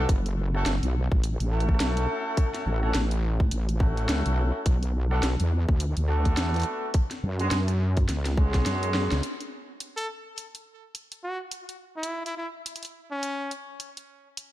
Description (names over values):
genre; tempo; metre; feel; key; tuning
glitch hop; 105 BPM; 4/4; swing 59% on 16ths; F# minor; A4 = 444 Hz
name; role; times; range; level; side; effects
mellow horn section; stabs; 0.0-9.2 s; G#3 to A4+24c; -32 LUFS; equal; vintage 12-bit sampler grit, sidechain pumping, low-pass filter, ping-pong delay
wobble bass; bass; 0.0-9.2 s; F#1 to F#2; -25 LUFS; equal; chorus, tube saturation
drum and bass drum kit; drums; 0.1-14.5 s; hi-hat, rim click, snare drum; -32 LUFS; equal; studio reverb
electronic kick drum; drums; 0.1-8.6 s; none; -22 LUFS; equal; studio reverb
brilliant trumpet; melody; 10.0-13.5 s; C#4 to A4; -34 LUFS; equal; ping-pong delay
room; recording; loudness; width
small room ambience; dark, warm production; -24 LUFS; side -14 dB against mid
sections
0.0-9.2 A section; 9.2-14.5 B section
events
drum fill 8.1-9.2; band accent 9.1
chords
0.1 F#m7; 4.7 Bm7; 6.9 C#7sus4; 9.2 N.C.